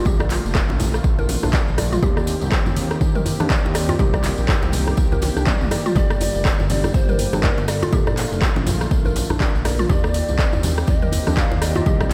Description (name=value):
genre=afro house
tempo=122 BPM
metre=4/4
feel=swing 58% on 16ths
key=unclear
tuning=A4 = 443 Hz
part: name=warm analog pad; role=sustained chords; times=0.0-12.1 s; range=D3 to G4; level=-31 LUFS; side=equal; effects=chorus, sidechain pumping
part: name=mallet-like synth pluck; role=arpeggios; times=0.0-12.1 s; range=D4 to D5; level=-30 LUFS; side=equal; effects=chorus, sidechain pumping, tape echo
part: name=smooth gliding synth bass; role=bass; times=0.1-12.1 s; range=F1 to Eb2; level=-26 LUFS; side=equal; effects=sidechain pumping
part: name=deep house drum kit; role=drums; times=0.1-12.1 s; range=handclaps, hi-hat, rim click, toms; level=-28 LUFS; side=equal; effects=overdrive, studio reverb
part: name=electronic kick drum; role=drums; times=0.1-12.1 s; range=none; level=-23 LUFS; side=equal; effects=overdrive, studio reverb
part: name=congas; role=percussion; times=0.1-12.1 s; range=none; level=-32 LUFS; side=equal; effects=none
part: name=tambourine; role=percussion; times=0.1-12.1 s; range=none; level=-38 LUFS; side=equal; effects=none
part: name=djembe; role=percussion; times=0.2-12.1 s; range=none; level=-32 LUFS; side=equal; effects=none
part: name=breathy mellow large pan pipes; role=melody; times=6.0-12.1 s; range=A4 to F5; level=-31 LUFS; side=equal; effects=tape echo
room=light reverb, studio ambience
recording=none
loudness=-19 LUFS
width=mono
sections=0.0-12.1 A section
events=drum fill 5.2-6.0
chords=0.1 Bbmaj7; 2.0 Eb6; 4.0 Cm7; 6.0 Gm; 7.9 Bbmaj7; 9.9 Eb6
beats=| 0.06 0.55 1.04 1.53 | 2.03 2.52 3.01 3.50 | 3.99 4.49 4.98 5.47 | 5.96 6.45 6.95 7.44 | 7.93 8.42 8.91 9.40 | 9.90 10.39 10.88 11.37 | 11.86